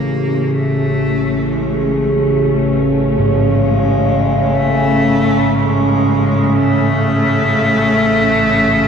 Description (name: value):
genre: dark ambient drone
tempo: free time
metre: none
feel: none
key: A major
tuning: A4 = 439 Hz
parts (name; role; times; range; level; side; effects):
- bright cello; melody; 0.0-8.9 s; F3 to Bb3; -18 LUFS; equal; tape echo
- muted chamber cello section; sustained chords; 0.0-8.9 s; A3 to C#4; -19 LUFS; left 1 dB; none
- quartz singing bowl; arpeggios; 0.0-8.9 s; G#2 to G#4; -22 LUFS; right 2 dB; tape echo
- overtone-sweeping drone; drone; 0.0-8.9 s; A1 to C#3; -15 LUFS; equal; chorus, built-in reverb
room: wet lush hall reverb, RT60 2.6 s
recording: dreamy mix soaked in reverb, cassette tape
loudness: -12 LUFS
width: side -7 dB against mid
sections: 0.0-8.9 A section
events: fade-in on cello section 0.0-8.9; fade-in on cello 0.0-8.9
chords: 0.0 A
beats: free time